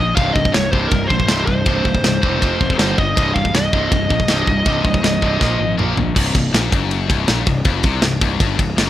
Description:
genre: heavy metal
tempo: 160 BPM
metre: 4/4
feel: straight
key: C minor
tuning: A4 = 440 Hz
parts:
  - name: high-gain lead guitar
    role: melody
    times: 0.0-5.7 s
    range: Bb4 to F5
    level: -21 LUFS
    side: equal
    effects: distortion
  - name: distorted electric guitar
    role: riff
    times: 0.0-6.1 s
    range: C2 to Bb3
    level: -24 LUFS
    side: right 9 dB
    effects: distortion
  - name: heavy high-gain guitar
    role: riff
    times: 0.0-8.9 s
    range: C2 to Bb3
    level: -22 LUFS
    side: left 8 dB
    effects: distortion
  - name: fuzz picked electric bass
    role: bass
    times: 0.0-8.9 s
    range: C1 to C2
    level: -21 LUFS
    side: equal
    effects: overdrive
  - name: tight metal drum kit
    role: drums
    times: 0.2-8.9 s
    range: crash cymbal, kick drum, ride cymbal, snare drum, toms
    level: -18 LUFS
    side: equal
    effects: none
room: little or no reverb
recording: rough home demo mix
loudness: -14 LUFS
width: side -13 dB against mid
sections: 0.0-6.2 A section; 6.2-8.9 B section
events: drum fill 5.4-6.2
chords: 0.2 C5; 2.4 F5; 2.8 G5; 3.2 Cm; 5.4 Bb5; 6.2 C5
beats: | 0.17 0.55 0.92 1.30 | 1.67 2.04 2.42 2.79 | 3.16 3.54 3.91 4.29 | 4.66 5.03 5.41 5.78 | 6.16 6.53 6.90 7.28 | 7.65 8.03 8.40 8.77

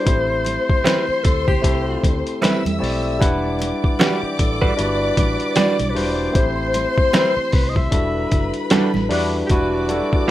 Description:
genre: lush 1970s-style soul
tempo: 76 BPM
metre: 4/4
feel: swing 58% on 16ths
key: E minor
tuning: A4 = 440 Hz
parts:
  - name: clear alto saxophone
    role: melody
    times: 0.0-10.3 s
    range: F#4 to E5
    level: -24 LUFS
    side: equal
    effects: plate reverb
  - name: warm studio violin section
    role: second line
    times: 0.0-10.3 s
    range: B4 to E6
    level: -26 LUFS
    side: left 2 dB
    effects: slapback echo, plate reverb
  - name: barky tine electric piano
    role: accompaniment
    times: 0.0-10.3 s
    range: G3 to F#5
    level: -23 LUFS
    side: left 1 dB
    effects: overdrive, plate reverb
  - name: vintage muted fingered electric bass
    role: bass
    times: 0.1-10.2 s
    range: E1 to E2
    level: -26 LUFS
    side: equal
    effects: none
  - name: lo-fi sampler-style drum kit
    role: drums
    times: 0.1-10.3 s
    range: hi-hat, kick drum, snare drum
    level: -20 LUFS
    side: equal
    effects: none
  - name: congas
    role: percussion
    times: 0.1-10.1 s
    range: none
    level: -26 LUFS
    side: right 4 dB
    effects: none
  - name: group handclap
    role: percussion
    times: 0.5-8.9 s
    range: none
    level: -40 LUFS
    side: equal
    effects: none
  - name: direct-recorded clean electric guitar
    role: riff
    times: 0.8-10.3 s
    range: G3 to B4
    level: -20 LUFS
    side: right 3 dB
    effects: none
  - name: dark horn section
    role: stabs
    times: 8.7-9.4 s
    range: A3 to D4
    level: -27 LUFS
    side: left 2 dB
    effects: plate reverb
room: moderate small room reverb, RT60 0.5 s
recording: rough home demo mix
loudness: -16 LUFS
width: side -14 dB against mid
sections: 0.0-9.5 A section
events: band accent 6.4-9.5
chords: 0.1 Am9; 3.2 Em9; 6.4 Am9; 7.9 Em11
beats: | 0.07 0.85 1.64 2.43 | 3.21 4.00 4.79 5.57 | 6.36 7.14 7.93 8.72 | 9.50 10.29

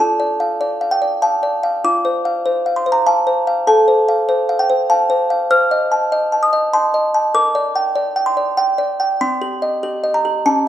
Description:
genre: classical, lullaby for music box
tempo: 98 BPM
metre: 3/4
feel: straight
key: unclear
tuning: A4 = 436 Hz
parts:
  - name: music box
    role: solo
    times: 0.0-10.7 s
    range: C4 to F6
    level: -14 LUFS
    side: equal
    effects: none
room: moderate concert hall reverb, RT60 1.9 s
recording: minimal, uncompressed stereo recording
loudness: -14 LUFS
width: side -11 dB against mid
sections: 0.0-10.7 A section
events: none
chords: 0.0 Dm/F; 1.8 F; 3.7 F/A; 5.5 Adim/C; 7.3 Gm/Bb; 9.2 Cm7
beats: 0.61 1.22 | 1.84 2.46 3.06 | 3.67 4.29 4.90 | 5.51 6.12 6.74 | 7.35 7.96 8.58 | 9.21 9.83 10.46

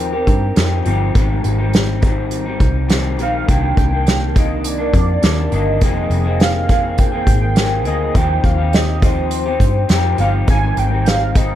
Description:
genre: indie pop, bedroom pop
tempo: 103 BPM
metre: 4/4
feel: straight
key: Eb major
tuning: A4 = 440 Hz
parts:
  - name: warm velvety synth lead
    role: melody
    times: 0.0-11.6 s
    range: Bb4 to Ab5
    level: -22 LUFS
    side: right 2 dB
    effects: analog chorus, analog delay
  - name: electric guitar through a small old amp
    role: accompaniment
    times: 0.0-11.6 s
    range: F2 to Ab4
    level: -21 LUFS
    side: left 3 dB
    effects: wide subtle chorus, warbly pitch drift, analog delay
  - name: vintage muted picked electric bass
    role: bass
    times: 0.0-11.6 s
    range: F1 to G2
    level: -18 LUFS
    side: equal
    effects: none
  - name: unplugged drum kit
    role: drums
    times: 0.3-11.5 s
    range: hi-hat, kick drum, snare drum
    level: -16 LUFS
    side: equal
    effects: none
room: studio ambience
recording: echo-heavy mix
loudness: -13 LUFS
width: side -12 dB against mid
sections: 0.0-11.6 A section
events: none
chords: 0.0 Eb69; 1.1 Abmaj7; 3.5 Cm9; 5.8 Fm11; 8.1 Eb69; 10.5 Abmaj7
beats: 0.57 | 1.15 1.73 2.31 2.90 | 3.48 4.06 4.65 5.23 | 5.81 6.40 6.98 7.56 | 8.15 8.73 9.31 9.89 | 10.48 11.06

